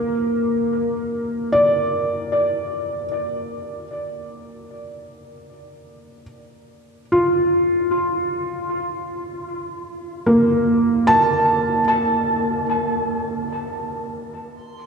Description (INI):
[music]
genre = ambient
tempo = free time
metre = none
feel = none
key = unclear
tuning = A4 = 438 Hz
[part]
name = felt-muted upright piano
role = arpeggios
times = 0.0-14.9 s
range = Bb3 to A5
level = -19 LUFS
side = equal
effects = tape echo
[part]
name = drifting glass-harmonics texture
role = texture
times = 14.5-14.9 s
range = C6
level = -43 LUFS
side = right 9 dB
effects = chorus, built-in reverb
[sound]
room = wet lush hall reverb, RT60 2.9 s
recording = dreamy mix soaked in reverb, cassette tape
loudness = -18 LUFS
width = side -5 dB against mid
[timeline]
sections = 0.0-14.5 A section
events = none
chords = 0.0 Bb